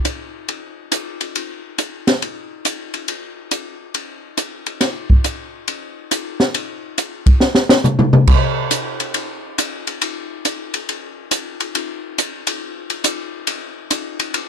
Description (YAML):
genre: jazz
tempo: 139 BPM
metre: 4/4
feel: swing 66% on 8ths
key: none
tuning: none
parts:
  - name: open jazz drum kit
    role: drums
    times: 0.0-14.5 s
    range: crash cymbal, hi-hat, kick drum, ride cymbal, snare drum, toms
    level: -17 LUFS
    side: equal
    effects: none
room: light reverb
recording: dry, close 1970s-style studio recording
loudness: -17 LUFS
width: side -7 dB against mid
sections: 0.0-8.3 A section; 8.3-14.5 B section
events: drum fill 7.4-8.3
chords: none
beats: 0.05 0.49 0.92 | 1.35 1.78 2.21 2.65 | 3.08 3.51 3.94 4.38 | 4.81 5.24 5.68 6.11 | 6.54 6.98 7.41 7.84 | 8.28 8.71 9.14 9.57 | 10.01 10.44 10.87 11.31 | 11.74 12.17 12.60 13.04 | 13.47 13.90 14.33